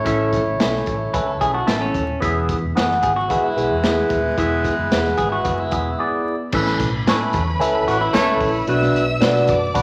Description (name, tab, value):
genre	uptempo 1960s-style soul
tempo	111 BPM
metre	4/4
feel	straight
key	A major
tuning	A4 = 437 Hz
part	warm horn section	second line	0.0-8.5 s	E3 to C#5	-25 LUFS	equal	none
part	barky tine electric piano	accompaniment	0.0-9.8 s	A2 to A5	-23 LUFS	equal	overdrive, phaser
part	vintage muted fingered electric bass	bass	0.1-9.8 s	D#1 to B2	-29 LUFS	equal	none
part	crunchy breakbeat drum kit	drums	0.1-9.8 s	crash cymbal, hi-hat, kick drum, snare drum	-26 LUFS	equal	none
part	semi-hollow electric guitar	riff	1.1-8.6 s	C#4 to B4	-27 LUFS	equal	none
part	warm studio violin section	second line	6.5-9.8 s	B4 to E6	-29 LUFS	equal	none
room	wet large studio reverb, RT60 1.2 s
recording	vinyl crackle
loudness	-19 LUFS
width	mono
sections	0.0-6.5 A section; 6.5-9.8 B section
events	tine electric piano fill 1.1-2.2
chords	0.0 A; 2.2 E; 6.5 Aadd9; 8.7 Bm